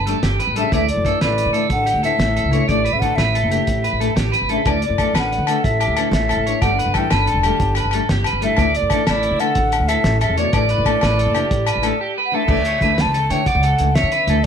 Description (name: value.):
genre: highlife guitar band.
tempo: 122 BPM (dotted quarters).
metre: 12/8.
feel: straight.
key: D major.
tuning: A4 = 440 Hz.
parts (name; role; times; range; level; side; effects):
bright baroque flute; melody; 0.0-14.5 s; D5 to A5; -21 LUFS; equal; none.
breathy trombone; second line; 0.0-12.1 s; A2 to E3; -27 LUFS; left 5 dB; none.
electric guitar at the edge of break-up; arpeggios; 0.0-14.4 s; E4 to D5; -22 LUFS; right 2 dB; lush chorus, slapback echo.
upright bass; bass; 0.0-14.5 s; E1 to D3; -21 LUFS; right 1 dB; none.
flamenco guitar; accompaniment; 0.1-14.4 s; E3 to D4; -26 LUFS; left 5 dB; none.
cloth-damped thuddy drum kit; drums; 0.1-14.5 s; crash cymbal, hi-hat, kick drum, snare drum; -23 LUFS; equal; none.
agogo bells; percussion; 4.7-12.0 s; none; -26 LUFS; left 8 dB; none.
room: light reverb.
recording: none.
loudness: -15 LUFS.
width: side -7 dB against mid.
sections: 0.0-12.5 A section; 12.5-14.5 B section.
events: none.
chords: 0.0 Gsus2; 0.7 Dsus2; 2.7 Asus4; 4.7 Dsus2; 6.6 Gsus2; 8.6 Dsus2; 10.5 Asus4; 12.5 Dsus2.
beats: 0.23 | 0.72 1.22 1.71 2.20 | 2.69 3.18 3.67 4.16 | 4.66 5.15 5.64 6.13 | 6.62 7.11 7.60 8.09 | 8.58 9.07 9.56 10.05 | 10.54 11.02 11.51 12.00 | 12.49 12.98 13.46 13.95 | 14.44.